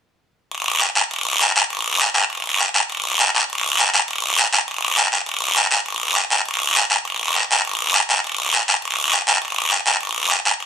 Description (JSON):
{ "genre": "latin", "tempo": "202 BPM", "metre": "4/4", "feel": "straight", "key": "none", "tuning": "none", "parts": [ { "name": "guiro", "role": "percussion", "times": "0.5-10.7 s", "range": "none", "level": "-16 LUFS", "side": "equal", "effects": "none" } ], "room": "moderate studio reverb, RT60 0.8 s", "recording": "minimal, uncompressed stereo recording", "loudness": "-16 LUFS", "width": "side -8 dB against mid", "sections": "0.5-10.0 A section", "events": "none", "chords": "none" }